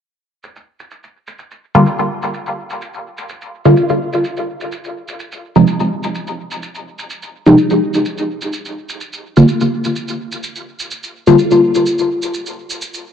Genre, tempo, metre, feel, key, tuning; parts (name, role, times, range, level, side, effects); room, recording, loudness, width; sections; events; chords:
dub techno; 126 BPM; 4/4; straight; G phrygian; A4 = 438 Hz
shaker; drums; 0.4-13.0 s; -29 LUFS; right 3 dB; low-pass filter on perc, low-pass filter on room
filtered dub chord stab; stabs; 1.7-11.4 s; C3 to F4; -12 LUFS; equal; phaser, dub echo
wet lush hall reverb, RT60 2.1 s; dark, warm production; -12 LUFS; side -8 dB against mid
0.4-13.1 A section
filter sweep on drum 0.4-13.1; filter sweep on synth stab 0.4-13.1
0.4 Gm7; 4.2 Fm7; 8.1 Gm7; 11.9 N.C.